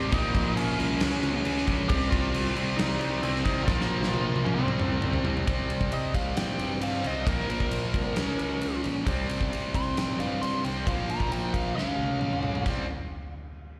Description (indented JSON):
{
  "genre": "hard rock",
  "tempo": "134 BPM",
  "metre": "4/4",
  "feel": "straight",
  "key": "unclear",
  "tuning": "A4 = 444 Hz",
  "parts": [
    { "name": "bluesy overdriven lead guitar", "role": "melody", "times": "0.0-12.6 s", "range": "C4 to C6", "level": "-36 LUFS", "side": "equal", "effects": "distortion, slapback echo, analog delay" },
    { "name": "high-gain distorted guitar", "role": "riff", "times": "0.0-12.8 s", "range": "Bb2 to Db4", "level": "-38 LUFS", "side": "equal", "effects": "distortion" },
    { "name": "overdriven electric guitar", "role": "riff", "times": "0.0-12.8 s", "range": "Bb2 to Db4", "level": "-34 LUFS", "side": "equal", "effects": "slapback echo" },
    { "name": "sludgy distorted guitar", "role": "riff", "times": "0.0-5.5 s", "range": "Bb2 to Db4", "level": "-38 LUFS", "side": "equal", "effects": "none" },
    { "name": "fuzz picked electric bass", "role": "bass", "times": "0.0-12.9 s", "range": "Bb1 to C3", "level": "-35 LUFS", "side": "equal", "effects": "overdrive" },
    { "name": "huge arena drum kit", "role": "drums", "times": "0.1-12.8 s", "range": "crash cymbal, kick drum, ride cymbal, snare drum, toms", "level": "-32 LUFS", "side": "equal", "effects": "none" }
  ],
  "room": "light reverb, small room ambience",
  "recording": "live gig heard through the venue's PA, recital hall reverb",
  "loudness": "-28 LUFS",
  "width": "mono",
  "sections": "0.0-5.5 A section; 5.5-12.7 B section; 12.7-13.8 C section",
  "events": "drum fill 3.7-5.5, 11.8-12.7; lead electric guitar solo 5.5-12.7",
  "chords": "0.1 Bbm; 1.0 Db5; 1.9 Cm; 3.7 Bb5; 4.6 C5; 7.3 Bb5; 8.2 Db5; 9.1 C5; 10.9 Bb5; 11.8 Db; 12.7 C5"
}